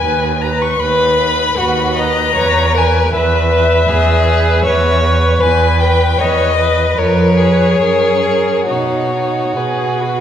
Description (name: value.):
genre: classical, slow romantic movement for string quartet.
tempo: 67-80 BPM.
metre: 4/4.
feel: rubato.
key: B major.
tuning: A4 = 441 Hz.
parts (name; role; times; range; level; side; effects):
warm violin; melody; 0.0-10.2 s; B4 to C#6; -17 LUFS; left 6 dB; none.
rich viola; accompaniment; 0.0-10.2 s; D#4 to B4; -18 LUFS; right 2 dB; none.
rich cello; bass; 0.0-10.2 s; D#2 to B2; -16 LUFS; right 2 dB; none.
rich violin; second line; 0.8-10.2 s; F#4 to D#5; -17 LUFS; left 2 dB; none.
room: wet recital hall reverb, RT60 1.5 s.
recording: recorded in a church or concert hall.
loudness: -11 LUFS.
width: side -9 dB against mid.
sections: 0.0-10.2 A section.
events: none.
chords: 0.0 B/D#; 2.4 C#m7/E; 7.0 C#7/E#; 7.8 F#; 8.7 B.